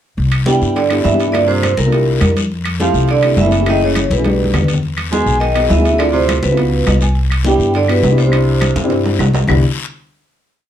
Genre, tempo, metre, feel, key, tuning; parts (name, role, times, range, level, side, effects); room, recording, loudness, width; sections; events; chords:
Afro-Cuban jazz; 206 BPM; 4/4; straight; C major; A4 = 440 Hz
upright bass; bass; 0.2-9.6 s; F#1 to G2; -16 LUFS; left 1 dB
congas; percussion; 0.2-9.5 s; -22 LUFS; left 1 dB
guiro; percussion; 0.2-9.6 s; -29 LUFS; left 8 dB
claves; percussion; 0.3-9.6 s; -26 LUFS; left 4 dB
timbales; percussion; 0.3-9.6 s; -24 LUFS; right 2 dB
vibraphone with medium hard mallets; melody; 0.5-9.2 s; Bb4 to G#5; -18 LUFS; right 2 dB
warm baritone saxophone; second line; 0.5-9.2 s; Bb2 to G#3; -21 LUFS; right 6 dB
dark upright piano; accompaniment; 0.5-9.6 s; A3 to Ab5; -18 LUFS; left 2 dB
moderate studio reverb, RT60 0.5 s; dark, warm production; -12 LUFS; side -10 dB against mid
0.2-9.5 A section; 9.5-10.6 final chord
drum fill 4.2-4.8, 8.8-9.5; upright piano fill 6.7-7.2
0.2 Cmaj9; 1.3 Gm9; 1.9 C7; 2.5 Fmaj7; 3.7 F#m7; 4.2 B7alt; 4.8 Emaj9; 6.0 Dm7; 6.6 Db9; 7.2 Cmaj9